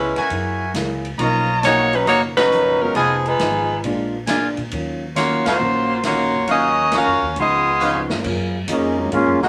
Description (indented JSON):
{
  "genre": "jazz, big band swing",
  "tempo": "136 BPM",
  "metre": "4/4",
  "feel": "swing 68% on 8ths",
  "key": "Eb minor",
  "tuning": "A4 = 439 Hz",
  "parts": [
    { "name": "warm saxophone section", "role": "melody", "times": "0.0-8.1 s", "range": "F3 to F5", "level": "-19 LUFS", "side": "equal", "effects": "none" },
    { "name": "fingerpicked steel-string acoustic guitar", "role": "accompaniment", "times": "0.0-9.4 s", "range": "Bb2 to Ab4", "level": "-30 LUFS", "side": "equal", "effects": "none" },
    { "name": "upright bass", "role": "bass", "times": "0.0-9.5 s", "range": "F1 to Bb2", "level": "-30 LUFS", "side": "equal", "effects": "none" },
    { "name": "brilliant trumpet section", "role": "stabs", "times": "0.2-8.0 s", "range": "Eb4 to A#5", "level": "-24 LUFS", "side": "equal", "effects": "none" },
    { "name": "swinging big-band drum kit", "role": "drums", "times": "0.2-9.5 s", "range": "crash cymbal, hi-hat, kick drum, ride cymbal, snare drum, toms", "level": "-32 LUFS", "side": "equal", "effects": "none" },
    { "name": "warm baby grand piano", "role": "accompaniment", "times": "1.2-9.1 s", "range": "Gb2 to F5", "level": "-31 LUFS", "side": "equal", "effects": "none" },
    { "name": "clear trombone section", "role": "second line", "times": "8.7-9.5 s", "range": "Db3 to Gb4", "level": "-19 LUFS", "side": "equal", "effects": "none" }
  ],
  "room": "wet studio reverb, RT60 0.7 s",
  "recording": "none",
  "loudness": "-19 LUFS",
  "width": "mono",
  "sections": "0.0-8.2 A section; 8.2-9.5 B section",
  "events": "band accent 2.3, 5.4; drum fill 7.8-8.2; trombone section solo 8.2-9.5",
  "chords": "0.3 Gb9; 1.2 Bmaj9#11; 3.0 Fm7b5; 3.8 Bb7; 4.7 Ebm9; 7.4 Db9; 8.2 Gbmaj9"
}